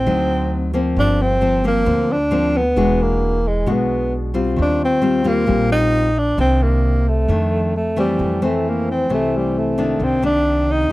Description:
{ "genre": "bossa nova", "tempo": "133 BPM", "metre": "4/4", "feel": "straight", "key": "unclear", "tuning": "A4 = 439 Hz", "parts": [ { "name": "breathy tenor saxophone", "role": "melody", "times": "0.0-10.9 s", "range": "G3 to Eb4", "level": "-18 LUFS", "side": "equal", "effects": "none" }, { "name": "nylon-string guitar", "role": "accompaniment", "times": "0.0-10.9 s", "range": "F2 to F#4", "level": "-20 LUFS", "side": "left 2 dB", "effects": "none" }, { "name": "upright bass", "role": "bass", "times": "0.0-10.9 s", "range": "E1 to F2", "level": "-22 LUFS", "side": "equal", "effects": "none" } ], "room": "light reverb", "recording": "dry, close 1970s-style studio recording", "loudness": "-15 LUFS", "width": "side -18 dB against mid", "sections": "0.0-8.2 A section; 8.2-10.9 B section", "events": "none", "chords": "0.1 D7b9; 1.0 Gm7; 2.8 E9; 4.6 Eb69; 6.4 Cm9; 7.3 F6; 8.2 Fmaj7; 10.0 Cm9" }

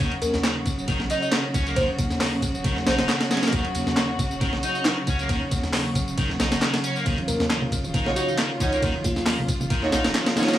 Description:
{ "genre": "breakbeat, breaks", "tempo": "136 BPM", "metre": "4/4", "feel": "swing 54% on 16ths", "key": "unclear", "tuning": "A4 = 439 Hz", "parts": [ { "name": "warm chamber string section", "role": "sustained chords", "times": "0.0-10.6 s", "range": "Db3 to Gb4", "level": "-28 LUFS", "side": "equal", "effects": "sidechain pumping" }, { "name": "distorted electric guitar", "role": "riff", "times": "0.0-10.6 s", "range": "Eb3 to Eb4", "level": "-30 LUFS", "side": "left 1 dB", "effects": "overdrive, analog delay" }, { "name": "saturated sub bass", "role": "bass", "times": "0.0-10.1 s", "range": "Eb1 to Eb2", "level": "-30 LUFS", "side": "equal", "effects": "tube saturation" }, { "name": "breakbeat sampler-style drum kit", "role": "drums", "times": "0.0-10.6 s", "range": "hi-hat, kick drum, ride cymbal, snare drum", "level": "-25 LUFS", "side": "equal", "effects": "studio reverb" }, { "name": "electronic tambourine and handclaps", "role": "drums", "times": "0.0-10.6 s", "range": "none", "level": "-32 LUFS", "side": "equal", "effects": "studio reverb" }, { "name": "bell-like FM electric piano", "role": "melody", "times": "0.2-3.1, 7.3-9.2 s", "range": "F4 to Eb5", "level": "-30 LUFS", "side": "equal", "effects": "chorus, phaser, AM radio sound, analog delay" }, { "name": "congas and bongos", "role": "percussion", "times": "7.2-10.5 s", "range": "none", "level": "-33 LUFS", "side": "right 2 dB", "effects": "none" }, { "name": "rich studio string section", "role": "stabs", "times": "8.1-10.4 s", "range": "Eb4 to Db5", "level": "-27 LUFS", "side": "right 2 dB", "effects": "low-pass filter, analog delay" } ], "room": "digital ambience", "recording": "dry, gritty hardware recording, small room ambience", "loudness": "-21 LUFS", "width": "side -12 dB against mid", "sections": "0.0-10.6 A section", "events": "none", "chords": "0.0 Ebm9" }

